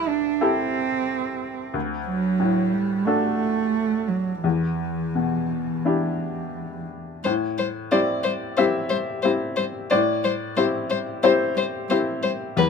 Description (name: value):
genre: neoclassical piano and strings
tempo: 89 BPM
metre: 4/4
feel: uneven beats, rubato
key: unclear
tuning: A4 = 440 Hz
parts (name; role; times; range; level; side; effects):
- dark cello; second line; 0.0-12.7 s; E3 to D4; -26 LUFS; right 6 dB; none
- bright upright piano; accompaniment; 0.0-12.7 s; C2 to E5; -24 LUFS; left 3 dB; none
- warm violin; melody; 7.2-12.7 s; B4 to C5; -24 LUFS; left 7 dB; none
room: light reverb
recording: minimal, uncompressed stereo recording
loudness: -21 LUFS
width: side -6 dB against mid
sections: 0.0-7.3 A section; 7.3-12.7 B section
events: none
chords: 0.0 C6; 1.7 D; 4.4 Em7; 7.3 Am7